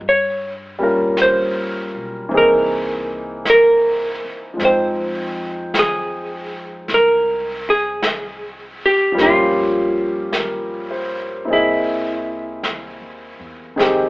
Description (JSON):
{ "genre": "jazz", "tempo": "52 BPM", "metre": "4/4", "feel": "swing 68% on 8ths", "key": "F minor", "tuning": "A4 = 439 Hz", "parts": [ { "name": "vintage hollow-body jazz guitar", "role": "melody", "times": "0.0-13.4 s", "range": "E4 to Db5", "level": "-16 LUFS", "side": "equal", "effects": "none" }, { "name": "warm grand piano", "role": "accompaniment", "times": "0.0-14.1 s", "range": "Eb3 to G5", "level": "-20 LUFS", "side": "equal", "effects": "none" }, { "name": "upright bass", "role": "bass", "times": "0.0-14.1 s", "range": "G1 to G2", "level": "-38 LUFS", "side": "equal", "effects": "none" }, { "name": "jazz brush drum kit", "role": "drums", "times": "0.0-14.1 s", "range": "brushed snare drum, hi-hat, snare drum", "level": "-26 LUFS", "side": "equal", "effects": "none" } ], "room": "light reverb", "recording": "band playing live in one room, telephone sound", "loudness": "-16 LUFS", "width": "side -21 dB against mid", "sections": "0.0-13.8 A section", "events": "none", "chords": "0.0 Gm7b5; 2.3 C7alt; 4.6 Fm9; 9.2 Gm7b5; 11.5 C7alt" }